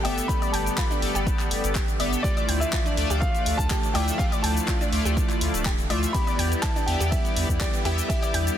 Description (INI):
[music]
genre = progressive house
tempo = 123 BPM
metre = 4/4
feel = straight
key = unclear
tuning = A4 = 440 Hz
[part]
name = warm grand piano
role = melody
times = 0.0-8.6 s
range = D5 to B5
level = -31 LUFS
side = left 1 dB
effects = tape echo
[part]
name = supersaw pad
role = sustained chords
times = 0.0-8.6 s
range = D3 to D5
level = -33 LUFS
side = right 1 dB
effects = sidechain pumping
[part]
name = analog pluck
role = arpeggios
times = 0.0-8.4 s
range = D4 to G5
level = -33 LUFS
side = equal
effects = chorus, sidechain pumping, tape echo
[part]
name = chorused polysynth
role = stabs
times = 0.0-8.6 s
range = A3 to E5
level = -29 LUFS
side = left 1 dB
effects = sidechain pumping, tape echo
[part]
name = round analog bass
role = bass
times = 0.0-8.5 s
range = D1 to E2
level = -27 LUFS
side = equal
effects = sidechain pumping
[part]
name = deep house drum kit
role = drums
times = 0.0-8.6 s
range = handclaps, hi-hat, ride cymbal, shaker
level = -31 LUFS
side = left 1 dB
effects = sidechain pumping on hats, sidechain pumping on perc, sidechain pumping on cymbals
[part]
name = electronic kick drum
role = drums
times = 0.3-8.2 s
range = none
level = -26 LUFS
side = equal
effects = none
[sound]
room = little or no reverb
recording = dense, heavily limited modern master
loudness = -22 LUFS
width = side -10 dB against mid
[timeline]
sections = 0.0-8.6 A section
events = none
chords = 0.0 Gadd9; 2.2 Dmadd9; 6.1 Em7